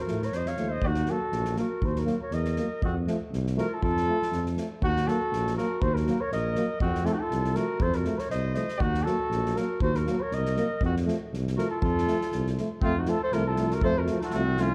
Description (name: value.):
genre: balkan folk, Balkan brass band.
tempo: 120 BPM.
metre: 2/4.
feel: swing 56% on 16ths.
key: F phrygian dominant.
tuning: A4 = 436 Hz.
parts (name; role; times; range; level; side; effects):
mellow flugelhorn; melody; 0.0-14.7 s; F4 to F5; -33 LUFS; equal; none.
warm clarinet; second line; 0.0-14.7 s; C4 to Db5; -36 LUFS; equal; none.
dark trombone; accompaniment; 0.1-14.7 s; F3 to Gb3; -39 LUFS; equal; none.
warm euphonium; accompaniment; 0.1-14.7 s; A3 to Bb3; -36 LUFS; equal; none.
mellow tuba; bass; 0.1-14.7 s; Bb1 to A2; -32 LUFS; equal; none.
soft-mallet drum kit; percussion; 0.1-14.6 s; kick drum, snare drum; -36 LUFS; equal; none.
room: light reverb.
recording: dark, warm production.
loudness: -27 LUFS.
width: mono.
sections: 0.0-4.8 A section; 4.8-12.8 A section; 12.8-14.7 B section.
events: none.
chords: 0.0 F; 0.8 Ebm; 2.8 F; 4.8 Ebm; 6.8 F; 8.8 Ebm; 10.8 F.